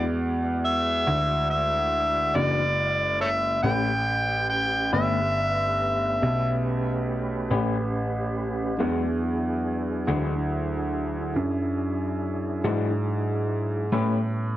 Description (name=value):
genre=slow blues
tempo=47 BPM (dotted quarters)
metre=12/8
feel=straight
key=E mixolydian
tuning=A4 = 444 Hz
part: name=overdriven harmonica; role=melody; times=0.0-6.6 s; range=A4 to G5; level=-24 LUFS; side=equal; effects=plate reverb
part: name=electric guitar through a small old amp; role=accompaniment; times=0.0-14.2 s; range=E3 to B4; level=-29 LUFS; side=left 6 dB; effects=harmonic tremolo, plate reverb
part: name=mellow tonewheel organ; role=sustained chords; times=0.0-14.6 s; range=F#3 to D5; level=-32 LUFS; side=right 2 dB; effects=chorus vibrato, wide subtle chorus, plate reverb
part: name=warm baby grand piano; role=bass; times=0.0-14.6 s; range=F#1 to A2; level=-26 LUFS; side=equal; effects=none
room=moderate club reverb, RT60 0.5 s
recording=none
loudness=-23 LUFS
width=side -14 dB against mid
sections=0.0-14.6 A section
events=none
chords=0.0 E9; 3.6 A9; 8.8 E9; 13.9 A9